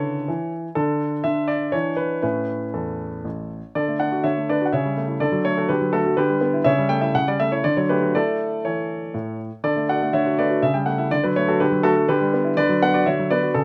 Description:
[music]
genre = classical-period piano sonatina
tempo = 123 BPM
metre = 3/4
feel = straight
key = A major, D major from 3.8 s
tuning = A4 = 442 Hz
[part]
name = clear baby grand piano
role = solo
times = 0.0-13.6 s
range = A1 to G5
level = -22 LUFS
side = equal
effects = none
[sound]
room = light reverb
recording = close, detailed microphones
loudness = -22 LUFS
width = mono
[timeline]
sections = 0.0-3.8 A section; 3.8-13.6 B section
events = none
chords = 0.0 C#m7; 0.8 N.C.; 1.7 E5; 2.2 A; 3.8 D; 4.7 A7/C#; 5.2 D; 6.2 Em7/D; 6.7 A7/C#; 7.6 D; 8.1 A; 9.6 D; 10.6 A7/C#; 11.1 D; 12.1 Em7/D; 12.6 Bm/D

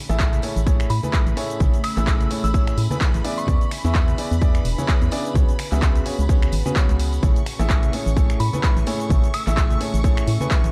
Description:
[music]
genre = piano house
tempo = 128 BPM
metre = 4/4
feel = swing 56% on 16ths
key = A major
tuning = A4 = 440 Hz
[part]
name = string machine, violins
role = sustained chords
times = 0.0-10.7 s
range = B5 to C#6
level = -40 LUFS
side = equal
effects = ensemble chorus, sidechain pumping
[part]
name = deep dark ambient pad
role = texture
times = 0.6-10.7 s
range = A3 to G#5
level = -37 LUFS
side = equal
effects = none
[part]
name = clear grand piano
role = riff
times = 0.1-10.7 s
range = A2 to E5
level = -30 LUFS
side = equal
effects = sidechain pumping, digital delay
[part]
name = organ-like FM bass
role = bass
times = 0.1-10.7 s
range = E1 to A2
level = -24 LUFS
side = equal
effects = sidechain pumping
[part]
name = house drum kit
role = drums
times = 0.1-10.7 s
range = cabasa, finger snaps, handclaps, hi-hat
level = -32 LUFS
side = equal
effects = overdrive
[part]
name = tambourine and congas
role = percussion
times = 0.1-10.6 s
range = none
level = -35 LUFS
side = equal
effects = none
[part]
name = electronic kick drum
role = drums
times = 0.2-10.6 s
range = none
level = -21 LUFS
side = equal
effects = overdrive
[part]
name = soft synth bell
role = melody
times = 0.9-4.0, 8.4-9.8 s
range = B5 to E6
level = -33 LUFS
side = equal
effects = chorus, vintage 12-bit sampler grit
[sound]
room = little or no reverb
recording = dark, warm production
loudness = -20 LUFS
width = mono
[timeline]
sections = 0.0-10.7 A section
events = none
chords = 0.0 Amaj7; 3.2 E7; 5.4 C#7sus4; 7.2 Amaj7

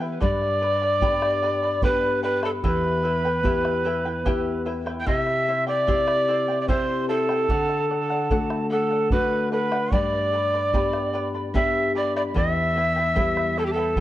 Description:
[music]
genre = andean folk, Andean ensemble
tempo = 74 BPM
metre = 3/4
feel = straight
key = unclear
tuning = A4 = 440 Hz
[part]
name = charango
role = accompaniment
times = 0.0-14.0 s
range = E4 to B5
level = -30 LUFS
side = left 1 dB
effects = plate reverb
[part]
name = nylon-string guitar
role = accompaniment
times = 0.0-14.0 s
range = E2 to G4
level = -28 LUFS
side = left 2 dB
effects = plate reverb
[part]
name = bombo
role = percussion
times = 0.0-14.0 s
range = none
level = -27 LUFS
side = right 1 dB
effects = none
[part]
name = breathy bright large pan pipes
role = melody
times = 0.2-14.0 s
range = G4 to G5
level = -24 LUFS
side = equal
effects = plate reverb, tape echo
[part]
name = breathy quena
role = second line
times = 0.2-14.0 s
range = G5 to G6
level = -30 LUFS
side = right 4 dB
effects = plate reverb
[sound]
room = moderate studio reverb, RT60 0.6 s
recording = cassette tape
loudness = -20 LUFS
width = side -14 dB against mid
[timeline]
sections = 0.2-14.0 A section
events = none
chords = 0.2 G; 2.6 Em; 5.1 C; 7.5 D; 9.9 G; 12.4 Em

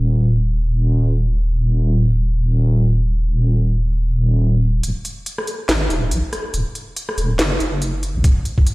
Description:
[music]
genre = deep dubstep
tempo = 141 BPM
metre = 4/4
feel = swing 57% on 16ths, half-time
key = Eb minor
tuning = A4 = 440 Hz
[part]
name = deep soft wobble bass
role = bass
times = 0.0-8.4 s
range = Eb1 to Bb1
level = -16 LUFS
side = equal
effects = chorus
[part]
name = garage drum kit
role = drums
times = 4.8-8.7 s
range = hi-hat, rim click, snare drum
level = -22 LUFS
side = equal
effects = none
[part]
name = electronic kick drum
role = drums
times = 8.2-8.7 s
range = none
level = -14 LUFS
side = equal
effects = none
[sound]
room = little or no reverb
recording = played on a big sound system in a bare room, stone room reverb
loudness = -16 LUFS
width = side -22 dB against mid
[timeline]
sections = 0.0-4.8 A section; 4.8-8.7 B section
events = filter sweep on drum 0.0-4.8; build-up 4.8-8.7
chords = none

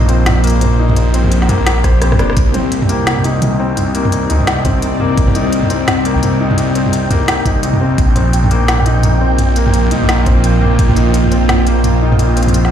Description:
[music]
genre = half-time drum and bass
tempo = 171 BPM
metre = 4/4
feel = swing 60% on 16ths, half-time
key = unclear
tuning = A4 = 440 Hz
[part]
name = bowed-like drone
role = sustained chords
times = 0.0-12.7 s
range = Bb2 to D5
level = -19 LUFS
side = right 1 dB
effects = built-in reverb, sidechain pumping
[part]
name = felt-muted upright piano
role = arpeggios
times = 0.0-12.7 s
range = Bb3 to C5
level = -20 LUFS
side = left 4 dB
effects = dub echo
[part]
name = phased detuned saw bass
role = bass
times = 0.0-12.7 s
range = F1 to D2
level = -14 LUFS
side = equal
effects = phaser
[part]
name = organic electronic drum kit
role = drums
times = 0.0-12.7 s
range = hi-hat, rim click, snare drum, toms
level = -17 LUFS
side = equal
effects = none
[part]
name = electronic kick drum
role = drums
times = 1.8-2.5, 4.7-5.3, 7.5-8.1, 10.3-10.9 s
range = none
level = -14 LUFS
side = equal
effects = overdrive
[part]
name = flickering grainy texture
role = texture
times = 2.7-12.7 s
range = G5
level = -25 LUFS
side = right 3 dB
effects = built-in reverb
[sound]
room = little or no reverb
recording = played on a big sound system in a bare room, stone room reverb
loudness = -10 LUFS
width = side -9 dB against mid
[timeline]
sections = 0.0-12.7 A section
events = drum fill 1.8-2.4; kick drops out 2.0-2.4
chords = 0.0 Bbsus2; 2.4 Cmadd9; 8.0 Bbsus2

